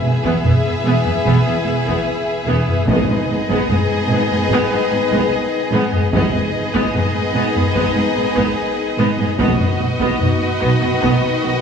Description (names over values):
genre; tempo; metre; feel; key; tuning
cinematic, epic orchestral film score; 74 BPM; 4/4; straight; unclear; A4 = 444 Hz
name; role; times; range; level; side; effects
rich symphonic violin section; melody; 0.0-11.6 s; D#5 to E5; -25 LUFS; left 1 dB; none
rich symphonic violin section; second line; 0.0-11.6 s; F#4 to G#4; -25 LUFS; left 2 dB; none
rich symphonic viola section; accompaniment; 0.0-11.5 s; B3; -24 LUFS; right 1 dB; none
mellow French horn section; sustained chords; 0.0-11.6 s; D#3 to B4; -25 LUFS; left 5 dB; none
rich symphonic string section; sustained chords; 0.0-11.6 s; B3 to B4; -23 LUFS; left 1 dB; none
clear studio double bass section; bass; 0.0-11.5 s; E1 to B1; -22 LUFS; right 3 dB; none
rich symphonic cello section; bass; 0.0-11.5 s; E2 to B2; -23 LUFS; right 2 dB; none
taiko ensemble; drums; 0.2-11.6 s; none; -22 LUFS; left 1 dB; none
room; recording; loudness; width
wet scoring stage reverb, RT60 1.7 s; small room ambience; -14 LUFS; side -7 dB against mid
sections
0.0-11.6 A section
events
none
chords
0.0 E; 2.9 G#m; 9.4 B